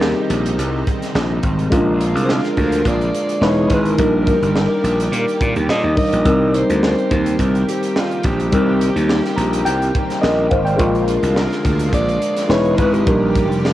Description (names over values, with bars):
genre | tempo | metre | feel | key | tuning
polished 1980s jazz-funk pop | 106 BPM | 4/4 | swing 54% on 16ths | C minor | A4 = 440 Hz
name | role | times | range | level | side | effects
breathy alto saxophone | melody | 0.0-13.7 s | F4 to Eb5 | -23 LUFS | equal | cassette tape
mellow tine electric piano | accompaniment | 0.0-13.7 s | G3 to Bb5 | -19 LUFS | left 1 dB | lush chorus, cassette tape
lush unison pad | sustained chords | 0.0-13.7 s | C3 to D#5 | -27 LUFS | right 2 dB | chorus, cassette tape
gritty slap bass | bass | 0.0-13.7 s | E1 to Bb2 | -19 LUFS | equal | overdrive
crisp fusion drum kit | drums | 0.0-13.7 s | hi-hat, kick drum, snare drum | -22 LUFS | right 1 dB | cassette tape
room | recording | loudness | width
light reverb, studio ambience | home recording on cassette | -14 LUFS | side -14 dB against mid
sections
0.0-13.7 A section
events
tine electric piano fill 9.1-10.8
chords
0.0 Cm7; 1.7 Bb7; 3.4 Emaj7; 4.0 Ebmaj7; 6.3 Cm7; 10.8 Bb7; 12.5 Emaj7; 13.1 Ebmaj7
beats
0.01 0.58 1.15 | 1.72 2.29 2.85 3.42 | 3.99 4.55 5.12 5.69 | 6.26 6.83 7.39 7.96 | 8.53 9.10 9.66 10.23 | 10.80 11.37 11.93 12.50 | 13.07 13.63